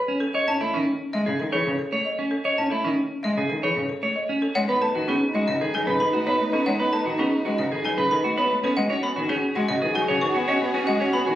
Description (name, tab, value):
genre	classical, minimalist pattern music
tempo	114 BPM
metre	4/4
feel	straight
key	unclear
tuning	A4 = 444 Hz
part	folk marimba with hard mallets	melody	0.0-11.3 s	G#4 to F#5	-30 LUFS	left 3 dB	none
part	clean electric guitar	arpeggios	0.1-11.4 s	C#4 to C#5	-24 LUFS	right 1 dB	none
part	rich cello	accompaniment	0.5-11.4 s	C#3 to C#4	-27 LUFS	equal	none
part	xylophone with wooden mallets	arpeggios	0.5-11.3 s	D#5 to C#6	-30 LUFS	left 1 dB	none
part	warm French horn	second line	4.6-11.4 s	D#4 to F#4	-30 LUFS	equal	none
part	warm symphonic string section	sustained chords	4.6-11.4 s	D#4 to B4	-31 LUFS	left 1 dB	none
room	wet large studio reverb, RT60 0.9 s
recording	recorded on a phone in the room, studio reverb, compression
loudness	-21 LUFS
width	side -12 dB against mid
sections	0.0-4.6 A section; 4.6-11.4 B section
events	none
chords	0.3 Amaj7; 4.6 B13; 8.8 G#m7